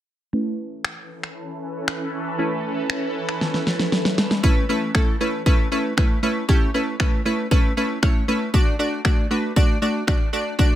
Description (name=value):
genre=dance-pop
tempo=117 BPM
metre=4/4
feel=straight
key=unclear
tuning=A4 = 442 Hz
part: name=wavetable chord stab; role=accompaniment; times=0.3-10.8 s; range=A3 to D5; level=-22 LUFS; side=equal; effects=sidechain pumping, low-pass filter
part: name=shimmering ambient pad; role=sustained chords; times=1.1-4.4 s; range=E3 to B4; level=-28 LUFS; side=right 1 dB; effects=chorus, built-in reverb, phaser, sidechain pumping, low-pass filter
part: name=pop drum kit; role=drums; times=0.8-10.7 s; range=finger snaps, kick drum, snare drum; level=-19 LUFS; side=equal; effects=none
room=light reverb, digital ambience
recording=none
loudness=-19 LUFS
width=side -12 dB against mid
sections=0.3-4.4 A section; 4.4-10.8 B section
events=filter sweep 0.3-4.4; drum fill 3.4-4.4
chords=0.3 Aadd9; 8.5 D